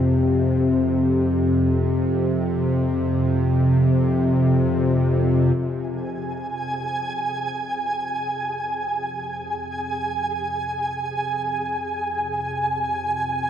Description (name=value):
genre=dark ambient drone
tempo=free time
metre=none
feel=none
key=F minor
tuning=A4 = 439 Hz
part: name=bowed-like drone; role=drone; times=0.0-13.5 s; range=F2 to C3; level=-21 LUFS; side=equal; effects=built-in reverb
part: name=flickering grainy texture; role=texture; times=6.1-13.5 s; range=Ab5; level=-24 LUFS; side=right 2 dB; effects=built-in reverb
room=wet huge ambient reverb, RT60 7.2 s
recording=none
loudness=-20 LUFS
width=side -9 dB against mid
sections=0.0-5.6 A section; 5.6-13.5 B section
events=fade-in on synth drone 5.6-13.5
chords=0.0 F5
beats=free time